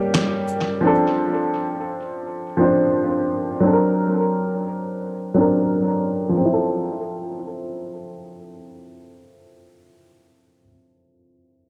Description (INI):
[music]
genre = lo-fi hip hop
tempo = 86 BPM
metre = 4/4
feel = swing 61% on 16ths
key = F major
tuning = A4 = 441 Hz
[part]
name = warm upright piano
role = accompaniment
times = 0.0-11.7 s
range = F3 to C5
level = -22 LUFS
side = equal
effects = low-pass filter, tape echo
[part]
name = dusty soul sampler-style drum kit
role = drums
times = 0.1-0.7 s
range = handclaps, hi-hat, shaker, snare drum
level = -27 LUFS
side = equal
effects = tape echo
[sound]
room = moderate plate reverb, RT60 1.7 s, digital ambience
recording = echo-heavy mix, cassette tape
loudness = -21 LUFS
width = mono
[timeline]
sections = 0.0-6.4 A section; 6.4-9.2 B section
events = filter sweep on upright piano 0.0-6.4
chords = 0.0 A7b9; 0.8 Dm7; 3.6 D7b13; 6.4 Fmaj7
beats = 0.12 | 0.82 1.52 2.22 2.91 | 3.61 4.31 5.01 5.70 | 6.40 7.10 7.80 8.49